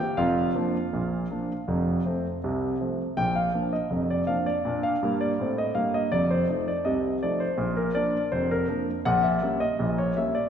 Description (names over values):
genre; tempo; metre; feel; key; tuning
ragtime piano; 81 BPM; 2/4; straight; Bb major; A4 = 440 Hz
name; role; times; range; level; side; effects
warm concert grand piano; solo; 0.0-10.5 s; F1 to G5; -24 LUFS; equal; none
room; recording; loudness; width
wet scoring stage reverb, RT60 1.9 s; heard from further back in the room; -24 LUFS; side -8 dB against mid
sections
0.0-3.2 A section; 3.2-10.5 B section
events
none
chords
0.2 Bb/F; 1.7 F; 3.2 Bb; 6.1 F7; 7.6 Bb; 9.1 Bbdim7